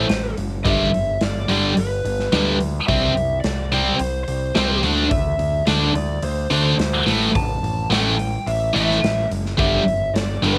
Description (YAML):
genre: hard rock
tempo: 108 BPM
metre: 4/4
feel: straight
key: A minor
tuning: A4 = 440 Hz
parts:
  - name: lead guitar through a small cranked amp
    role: melody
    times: 0.0-10.6 s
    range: B4 to A5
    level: -27 LUFS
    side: equal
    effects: overdrive
  - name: high-gain distorted guitar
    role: riff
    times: 0.0-10.6 s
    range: G2 to D4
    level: -27 LUFS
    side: equal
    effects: distortion, cassette tape
  - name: scooped high-gain guitar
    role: riff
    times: 0.0-10.6 s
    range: G2 to D4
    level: -22 LUFS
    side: equal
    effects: distortion, cassette tape
  - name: growling picked electric bass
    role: bass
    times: 0.0-10.6 s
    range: F#1 to D2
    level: -27 LUFS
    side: equal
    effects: overdrive
  - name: big rock drum kit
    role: drums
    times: 0.1-10.6 s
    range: hi-hat, kick drum, snare drum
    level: -28 LUFS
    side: equal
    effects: cassette tape
room: light reverb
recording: home recording on cassette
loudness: -20 LUFS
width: mono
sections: 0.0-10.6 A section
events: none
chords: 0.0 Am; 0.7 G; 2.9 C; 4.8 D5; 7.1 A5; 9.6 G5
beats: 0.10 | 0.66 1.22 1.77 2.33 | 2.89 3.45 4.00 4.56 | 5.12 5.67 6.23 6.79 | 7.35 7.91 8.47 9.03 | 9.59 10.15